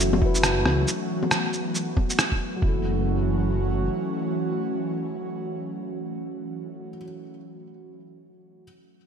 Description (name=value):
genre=future garage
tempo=137 BPM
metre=4/4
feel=swing 61% on 16ths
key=F# minor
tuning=A4 = 440 Hz
part: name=felt-muted upright piano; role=accompaniment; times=0.0-8.6 s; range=F#3 to B4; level=-33 LUFS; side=left 3 dB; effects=wide subtle chorus, sidechain pumping, ping-pong delay
part: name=airy breathy pad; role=sustained chords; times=0.0-6.9 s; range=E3 to F#4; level=-28 LUFS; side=right 1 dB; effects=chorus, sidechain pumping
part: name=dark detuned saw bass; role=bass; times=0.0-3.9 s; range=F#1 to C#2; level=-25 LUFS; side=equal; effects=sidechain pumping
part: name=electronic shaker, bongos and rim click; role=drums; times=0.0-2.3 s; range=none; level=-25 LUFS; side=equal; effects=gated reverb
part: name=electronic kick drum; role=drums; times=0.2-2.7 s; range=none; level=-23 LUFS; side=equal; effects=none
room=moderate lush hall reverb, RT60 2.1 s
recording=bright 1980s-style digital production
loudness=-23 LUFS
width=side -7 dB against mid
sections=0.0-2.6 A section; 2.6-6.1 B section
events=none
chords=0.0 F#m7